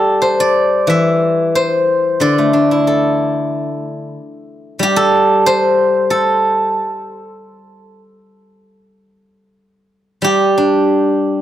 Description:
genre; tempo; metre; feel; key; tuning
chinese traditional, Chinese solo plucked strings; 82-94 BPM; 4/4; rubato; A yu mode; A4 = 440 Hz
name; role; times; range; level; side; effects
steel-string zither; solo; 0.0-11.4 s; D3 to E5; -12 LUFS; equal; none
room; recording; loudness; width
little or no reverb; dry, close 1970s-style studio recording; -12 LUFS; side -12 dB against mid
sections
0.0-10.2 A section; 10.2-11.4 B section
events
none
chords
none

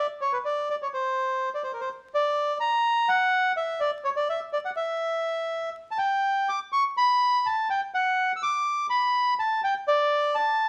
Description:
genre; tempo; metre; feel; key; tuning
tango; 125 BPM; 4/4; rubato; D major; A4 = 440 Hz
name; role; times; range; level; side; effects
bandoneon; solo; 0.0-10.7 s; Bb4 to E6; -26 LUFS; equal; none
room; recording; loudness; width
wet studio reverb, RT60 0.8 s; vinyl crackle; -26 LUFS; mono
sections
0.0-10.7 A section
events
none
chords
none

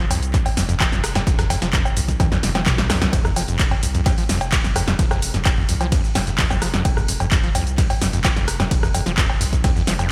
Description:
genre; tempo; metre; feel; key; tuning
acid house; 129 BPM; 4/4; straight; unclear; A4 = 439 Hz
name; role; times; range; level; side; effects
acid bass, saw; riff; 0.0-10.1 s; F1 to F3; -27 LUFS; equal; overdrive, cassette tape, sidechain pumping, digital delay
saturated sub bass; bass; 0.0-10.1 s; F1 to C2; -28 LUFS; equal; tube saturation, sidechain pumping
dusty soul sampler-style drum kit; drums; 0.1-10.1 s; hi-hat, snare drum; -37 LUFS; equal; none
punchy analog drum machine; drums; 0.1-10.1 s; cowbell, handclaps, hi-hat, ride cymbal, rim click, shaker, snare drum, toms; -25 LUFS; equal; gated reverb
electronic kick drum; drums; 0.3-9.7 s; none; -23 LUFS; equal; none
room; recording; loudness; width
light reverb; bright 1980s-style digital production; -19 LUFS; mono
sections
0.0-10.1 A section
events
drum fill 2.2-3.1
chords
0.0 F5

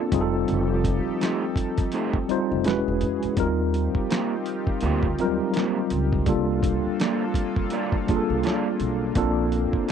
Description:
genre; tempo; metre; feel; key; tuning
R&B, neo-soul; 83 BPM; 4/4; swing 60% on 16ths; unclear; A4 = 442 Hz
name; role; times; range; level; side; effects
mellow tine electric piano; accompaniment; 0.0-9.9 s; Gb3 to C5; -24 LUFS; equal; medium stereo tremolo
chorused pulse-width pad; sustained chords; 0.0-9.9 s; E3 to A4; -34 LUFS; left 1 dB; none
upright bass; bass; 0.1-9.8 s; E1 to F2; -27 LUFS; equal; none
dusty soul sampler-style drum kit; drums; 0.1-9.9 s; hi-hat, kick drum, snare drum; -26 LUFS; equal; overdrive
electric guitar through a small old amp; second line; 1.2-9.9 s; A3 to D5; -28 LUFS; right 7 dB; none
room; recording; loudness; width
light reverb; dry, close 1970s-style studio recording; -22 LUFS; side -8 dB against mid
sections
0.0-9.9 A section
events
none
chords
0.1 F9; 2.6 E69; 3.4 Eb69; 6.3 C13sus4; 9.2 Bbmaj9

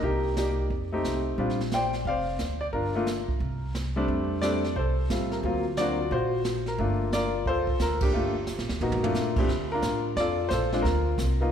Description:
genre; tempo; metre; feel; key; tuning
jazz piano trio; 178 BPM; 4/4; swing 64% on 8ths; G minor; A4 = 439 Hz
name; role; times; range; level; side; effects
clear baby grand piano; melody; 0.0-11.5 s; Bb2 to G5; -27 LUFS; left 1 dB; none
upright bass; bass; 0.0-11.5 s; F1 to A2; -30 LUFS; equal; none
jazz brush drum kit; drums; 0.0-11.5 s; brushed snare drum, crash cymbal, hi-hat, kick drum, ride cymbal, snare drum, toms; -32 LUFS; right 2 dB; none
room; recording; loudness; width
wet scoring stage reverb, RT60 1.5 s; recorded in a church or concert hall; -25 LUFS; side -8 dB against mid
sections
0.0-9.5 A section; 9.5-11.5 B section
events
band accent 8.0; drum fill 8.5-9.2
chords
0.0 Cm7; 0.7 F7; 1.4 Bb69; 2.7 Gm7; 3.4 C5; 4.1 F6; 5.4 D7alt; 6.8 Gm9; 9.5 Bbmaj9; 10.8 C9sus4

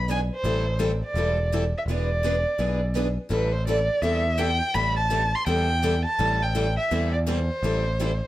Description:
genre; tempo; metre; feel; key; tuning
acoustic string swing (jazz manouche); 167 BPM; 4/4; swing 60% on 8ths; A minor; A4 = 440 Hz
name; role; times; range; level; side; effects
dark violin; melody; 0.0-8.3 s; B4 to C6; -26 LUFS; right 1 dB; none
modern bright picked electric bass; bass; 0.0-8.2 s; E1 to E2; -25 LUFS; equal; none
picked steel-string acoustic guitar; accompaniment; 0.1-8.1 s; E3 to A4; -30 LUFS; left 4 dB; none
picked steel-string acoustic guitar; accompaniment; 0.1-8.1 s; E3 to B4; -34 LUFS; right 5 dB; none
room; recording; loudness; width
moderate studio reverb, RT60 0.7 s; none; -22 LUFS; side -15 dB against mid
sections
0.0-3.3 A section; 3.3-8.3 A section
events
none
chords
0.4 Am7; 1.9 E7; 3.3 Am7

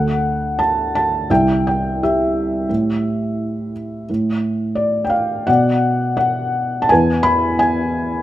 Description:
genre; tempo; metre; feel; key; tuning
classical, lyrical solo piano; 85 BPM; 4/4; rubato; A minor; A4 = 440 Hz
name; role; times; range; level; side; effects
felt-muted upright piano; solo; 0.0-8.2 s; C2 to B5; -16 LUFS; equal; none
room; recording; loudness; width
light reverb; close, detailed microphones; -15 LUFS; side -13 dB against mid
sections
0.0-8.2 A section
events
none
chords
0.0 D; 1.3 C; 2.7 A5; 4.1 N.C.; 5.5 Bm; 6.9 E

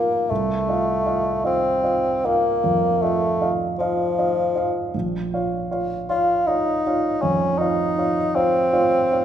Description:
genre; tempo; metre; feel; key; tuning
classical, romantic duo for bassoon and grand piano; 52 BPM (dotted quarters); 12/8; rubato; unclear; A4 = 440 Hz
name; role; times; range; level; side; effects
warm bassoon; melody; 0.0-9.2 s; F3 to F4; -20 LUFS; left 2 dB; none
warm grand piano; accompaniment; 0.0-9.2 s; Bb1 to F5; -23 LUFS; right 3 dB; none
room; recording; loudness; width
moderate scoring stage reverb, RT60 1.5 s; minimal, uncompressed stereo recording; -19 LUFS; side -10 dB against mid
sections
0.0-9.2 A section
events
none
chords
0.3 F7/C; 4.9 Bbm

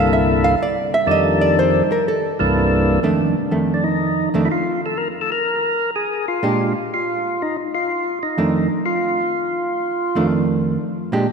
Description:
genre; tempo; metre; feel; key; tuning
jazz; 124 BPM; 4/4; swing 69% on 8ths; F mixolydian; A4 = 440 Hz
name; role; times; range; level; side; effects
percussive tonewheel organ; melody; 0.0-10.3 s; C2 to Bb4; -19 LUFS; left 1 dB; slow rotary speaker, overdrive
hollow-body jazz guitar; accompaniment; 0.0-11.3 s; F2 to F5; -20 LUFS; right 2 dB; none
room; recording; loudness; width
wet lush hall reverb, RT60 2.8 s; dreamy mix soaked in reverb; -17 LUFS; side -5 dB against mid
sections
0.0-3.0 A section; 3.0-11.3 B section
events
hollow-body jazz guitar solo 0.0-3.0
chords
0.0 C13; 1.1 F13; 2.0 C13; 3.0 F6; 5.0 Bb6; 6.9 F6; 10.8 Bb6

